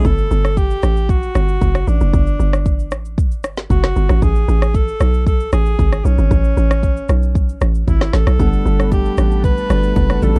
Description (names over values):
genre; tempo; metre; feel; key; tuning
amapiano; 115 BPM; 4/4; straight; unclear; A4 = 440 Hz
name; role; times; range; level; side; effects
breathy alto saxophone; melody; 0.0-10.4 s; C#4 to B4; -25 LUFS; equal; analog delay
bell-like tine electric piano; accompaniment; 0.0-0.1, 8.4-10.4 s; G3 to F#5; -24 LUFS; equal; none
hollow log drum bass; bass; 0.0-10.4 s; F#1 to B1; -18 LUFS; equal; none
deep house drum kit; drums; 0.0-10.4 s; kick drum, rim click, shaker, snare drum; -20 LUFS; equal; none
lush unison pad; sustained chords; 8.4-10.4 s; A3 to B5; -35 LUFS; equal; chorus
congas and bongos; percussion; 8.4-10.4 s; none; -30 LUFS; equal; none
room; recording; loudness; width
little or no reverb; dark, warm production; -16 LUFS; mono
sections
0.0-10.4 A section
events
none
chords
0.0 Gsus2; 4.2 Amaj9; 8.4 Gmaj9